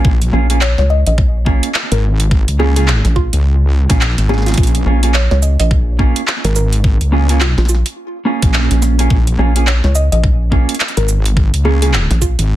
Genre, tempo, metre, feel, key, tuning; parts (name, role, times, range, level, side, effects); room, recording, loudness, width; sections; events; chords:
glitch hop; 106 BPM; 4/4; swing 60% on 16ths; Bb minor pentatonic; A4 = 440 Hz
mellow electric guitar; stabs; 0.0-11.9 s; Bb3 to Ab4; -20 LUFS; right 3 dB; vibrato effect, sidechain pumping, tape echo
rubbery square bass; bass; 0.0-12.4 s; Bb1 to Db2; -13 LUFS; equal
wobble bass; bass; 0.0-12.6 s; Ab1 to Db2; -13 LUFS; equal; chorus, tube saturation
electronic kick drum; drums; 0.0-12.4 s; -13 LUFS; equal
dubstep drum kit; drums; 0.2-12.5 s; handclaps, hi-hat, shaker, snare drum; -18 LUFS; right 1 dB
woody wave-folded pluck; melody; 0.6-12.4 s; F4 to Eb5; -23 LUFS; equal; chorus, tape echo
little or no reverb; dense, heavily limited modern master; -11 LUFS; side -14 dB against mid
0.0-12.6 A section
0.0 Bbm7